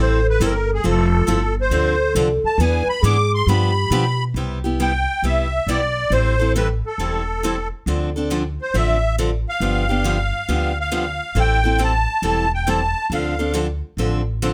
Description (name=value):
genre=acoustic string swing (jazz manouche)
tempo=137 BPM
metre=4/4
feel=swing 65% on 8ths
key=C major from 4.3 s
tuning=A4 = 440 Hz
part: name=musette accordion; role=melody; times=0.0-13.5 s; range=G#4 to D6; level=-24 LUFS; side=equal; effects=none
part: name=mellow hollow alto flute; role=second line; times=0.0-4.2 s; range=F4 to B4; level=-25 LUFS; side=equal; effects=none
part: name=picked steel-string acoustic guitar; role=accompaniment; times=0.0-14.5 s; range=C3 to A4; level=-26 LUFS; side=equal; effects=none
part: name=upright bass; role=bass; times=0.0-14.5 s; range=E1 to B2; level=-23 LUFS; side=equal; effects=none
room=light reverb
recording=none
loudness=-20 LUFS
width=mono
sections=0.0-4.3 A section; 4.3-14.5 B section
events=accordion solo 0.0-4.3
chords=0.0 Am7; 0.8 Fmaj9; 1.7 Dm7; 2.6 E7; 3.5 G7; 4.3 Cmaj7; 6.1 Am7; 7.9 Dm7; 9.6 G7; 11.4 Am7; 13.1 Dm7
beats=0.40 | 0.84 1.28 1.72 2.16 | 2.59 3.03 3.47 3.91 | 4.35 4.79 5.23 5.67 | 6.11 6.54 6.98 7.42 | 7.86 8.30 8.74 9.17 | 9.61 10.05 10.49 10.92 | 11.36 11.80 12.23 12.67 | 13.11 13.54 13.98 14.42